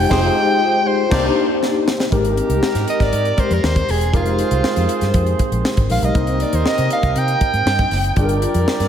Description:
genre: polished 1980s jazz-funk pop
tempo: 119 BPM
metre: 4/4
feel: straight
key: unclear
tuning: A4 = 441 Hz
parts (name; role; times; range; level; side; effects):
- breathy soprano saxophone; melody; 0.0-8.4 s; F4 to G5; -21 LUFS; right 1 dB; diffuse ambient delay
- tine electric piano; accompaniment; 0.0-8.9 s; G3 to C5; -20 LUFS; left 3 dB; ensemble chorus
- vintage muted fingered electric bass; bass; 0.0-8.9 s; E1 to C3; -20 LUFS; equal; none
- warm horn section; second line; 0.1-8.9 s; C4 to Eb5; -25 LUFS; right 3 dB; diffuse ambient delay
- tight funk drum kit; drums; 0.1-8.9 s; crash cymbal, hi-hat, kick drum, snare drum; -21 LUFS; equal; none
room: wet lush hall reverb, RT60 1.7 s, studio reverb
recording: dreamy mix soaked in reverb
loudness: -15 LUFS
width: side -9 dB against mid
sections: 0.0-2.1 A section; 2.1-8.9 B section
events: band accent 0.1-2.1; drum fill 1.6-2.1; soprano saxophone solo 2.1-8.9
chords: 0.0 Fm9; 1.1 Cm9; 2.1 Abmaj9; 4.1 Fm11; 6.2 Cm7; 8.2 Gm7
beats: | 0.11 0.61 1.11 1.62 | 2.12 2.62 3.13 3.63 | 4.13 4.64 5.14 5.65 | 6.15 6.66 7.16 7.66 | 8.17 8.67

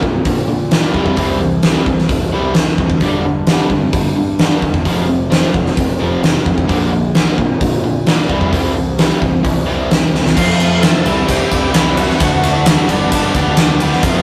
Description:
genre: classic rock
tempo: 131 BPM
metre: 4/4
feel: straight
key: unclear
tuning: A4 = 440 Hz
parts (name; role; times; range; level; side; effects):
- raw garage guitar; riff; 0.0-14.2 s; F2 to G4; -20 LUFS; equal; overdrive
- fuzz fingered electric bass; bass; 0.0-14.2 s; F1 to Bb2; -22 LUFS; equal; overdrive
- huge arena drum kit; drums; 0.0-14.1 s; crash cymbal, hi-hat, kick drum, ride cymbal, snare drum; -17 LUFS; equal; none
- overdriven tonewheel organ; melody; 10.4-13.8 s; D4 to A4; -26 LUFS; equal; slow rotary speaker, chorus vibrato
room: light reverb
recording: rough rehearsal-room recording, warm saturation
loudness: -14 LUFS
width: mono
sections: 0.0-10.4 A section; 10.4-14.2 B section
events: drum fill 10.1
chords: 0.0 Bb; 0.9 C; 3.0 G5; 4.8 F5; 6.7 Bb; 8.3 C; 10.4 F; 11.0 C; 12.2 D; 12.9 G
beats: 0.26 0.71 | 1.17 1.63 2.09 2.55 | 3.01 3.47 3.93 4.39 | 4.85 5.31 5.77 6.23 | 6.69 7.14 7.61 8.06 | 8.52 8.98 9.44 9.90 | 10.36 10.82 11.28 11.74 | 12.19 12.65 13.11 13.57 | 14.03

